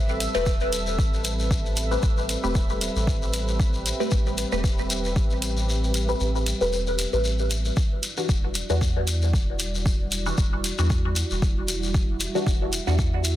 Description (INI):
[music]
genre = dub techno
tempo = 115 BPM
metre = 4/4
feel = swing 55% on 16ths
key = E minor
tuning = A4 = 440 Hz
[part]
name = dark analog pad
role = sustained chords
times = 0.0-13.4 s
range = G3 to E5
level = -32 LUFS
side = right 1 dB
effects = chorus, sidechain pumping
[part]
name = soft dub sub bass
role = bass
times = 0.0-13.4 s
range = E1 to E2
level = -27 LUFS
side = equal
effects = sidechain pumping
[part]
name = bubbling stepped-filter texture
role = texture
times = 0.0-7.8 s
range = E5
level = -37 LUFS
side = right 4 dB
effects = chorus, built-in reverb, sidechain pumping
[part]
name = shekere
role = percussion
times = 0.1-13.4 s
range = none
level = -32 LUFS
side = left 4 dB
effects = none
[part]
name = electronic hi-hat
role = drums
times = 0.2-13.4 s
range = none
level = -28 LUFS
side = right 2 dB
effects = none
[part]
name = filtered dub chord stab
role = stabs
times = 0.3-13.0 s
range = E3 to B4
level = -28 LUFS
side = left 1 dB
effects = phaser, sidechain pumping, dub echo
[part]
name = electronic kick drum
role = drums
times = 0.5-13.1 s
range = none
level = -23 LUFS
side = equal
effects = overdrive
[sound]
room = light reverb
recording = dense, heavily limited modern master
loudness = -22 LUFS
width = side -13 dB against mid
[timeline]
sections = 0.0-7.8 A section; 7.8-13.4 A section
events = kick drops out 5.7-7.8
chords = 0.0 Am9; 7.8 Em9